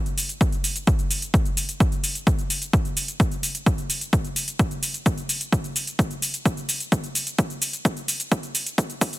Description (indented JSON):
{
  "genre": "EDM",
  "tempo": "129 BPM",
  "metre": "4/4",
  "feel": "straight",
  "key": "none",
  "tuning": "none",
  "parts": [
    { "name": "electronic hi-hat and shaker", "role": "drums", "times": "0.1-9.2 s", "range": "none", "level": "-26 LUFS", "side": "equal", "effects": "overdrive" },
    { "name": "electronic kick drum", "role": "drums", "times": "0.4-9.1 s", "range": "none", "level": "-22 LUFS", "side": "equal", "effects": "overdrive" }
  ],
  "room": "little or no reverb",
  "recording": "dense, heavily limited modern master, high-pass filter",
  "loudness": "-21 LUFS",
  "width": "side -18 dB against mid",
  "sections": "0.0-9.2 A section",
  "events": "build-up 0.0-9.2; filter sweep 0.0-9.2; drum fill 5.1-9.2",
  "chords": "none"
}